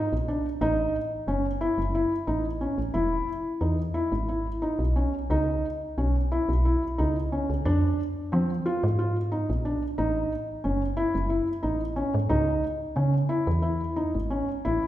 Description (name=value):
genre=contemporary instrumental, chamber music in an uneven meter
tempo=180 BPM (eighths)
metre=7/8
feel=straight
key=C# minor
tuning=A4 = 440 Hz
part: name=felt-muted upright piano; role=arpeggios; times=0.0-14.8 s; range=C4 to F4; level=-27 LUFS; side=equal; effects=none
part: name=woody FM bass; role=bass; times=0.1-14.8 s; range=E1 to F3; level=-27 LUFS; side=equal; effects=none
room=wet recital hall reverb, RT60 1.5 s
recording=heard from further back in the room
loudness=-24 LUFS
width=side -13 dB against mid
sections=0.0-14.7 A section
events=none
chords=0.0 N.C.; 0.6 A; 2.9 E; 5.3 C#m; 7.7 Fm; 10.0 A; 12.3 C#m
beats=0.28 | 0.61 0.94 1.28 1.61 1.94 2.28 2.61 | 2.94 3.28 3.61 3.95 4.29 4.62 4.96 | 5.31 5.64 5.98 6.32 6.66 6.99 7.32 | 7.66 7.99 8.33 8.66 8.99 9.32 9.65 | 9.98 10.31 10.65 10.97 11.30 11.64 11.97 | 12.30 12.63 12.96 13.30 13.63 13.97 14.31 | 14.65